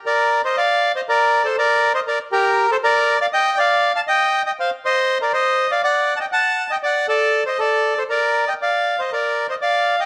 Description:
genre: tango.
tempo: 120 BPM.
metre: 4/4.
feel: rubato.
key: unclear.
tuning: A4 = 440 Hz.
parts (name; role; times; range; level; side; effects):
bandoneon; solo; 0.1-10.1 s; G4 to A5; -18 LUFS; equal; none.
room: light reverb.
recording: close, detailed microphones.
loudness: -18 LUFS.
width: mono.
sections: 0.1-10.1 A section.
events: none.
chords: 0.1 Cm11; 2.1 Bb; 4.1 Cm; 6.1 D; 8.1 Bbadd11.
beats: | 0.06 0.57 1.07 1.57 | 2.07 2.57 3.07 3.56 | 4.06 4.56 5.06 5.56 | 6.06 6.57 7.07 7.58 | 8.09 8.60 9.10 9.60.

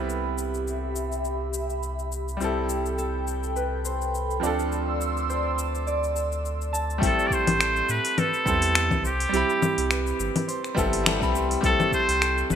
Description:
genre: sunset chillout.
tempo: 104 BPM.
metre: 4/4.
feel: swing 55% on 16ths.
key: A minor.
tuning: A4 = 440 Hz.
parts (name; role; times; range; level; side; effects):
bright baby grand piano; accompaniment; 0.0-12.6 s; F3 to B5; -29 LUFS; moving between left 5 dB and right 7 dB; auto-pan, digital delay.
airy breathy pad; sustained chords; 0.0-7.0 s; G4 to E6; -32 LUFS; left 1 dB; chorus, phaser.
warm sub bass; bass; 0.0-12.6 s; G1 to A2; -30 LUFS; equal; none.
smooth R&B drum kit; drums; 0.1-12.6 s; congas, finger snaps, hi-hat, shaker; -28 LUFS; left 3 dB; gated reverb.
Celtic harp; arpeggios; 2.4-12.6 s; G4 to A5; -31 LUFS; right 3 dB; digital delay.
electronic kick drum; drums; 7.0-12.0 s; none; -28 LUFS; equal; overdrive.
trumpet with straight mute; melody; 7.1-12.6 s; G4 to D5; -25 LUFS; equal; ping-pong delay.
room: moderate plate reverb, RT60 1.9 s, digital ambience.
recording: bright 1980s-style digital production.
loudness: -23 LUFS.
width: side -8 dB against mid.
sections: 0.0-7.0 A section; 7.0-12.6 B section.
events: filter sweep on analog synth pad 0.0-7.0.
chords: 0.0 Cmaj7; 2.4 Am9/C; 4.4 Dm9; 7.0 Am9; 9.0 Cmaj7; 11.6 Am7.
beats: | 0.09 0.67 1.25 1.82 | 2.40 2.98 3.56 4.13 | 4.71 5.29 5.86 6.44 | 7.02 7.59 8.17 8.75 | 9.32 9.90 10.48 11.05 | 11.63 12.21.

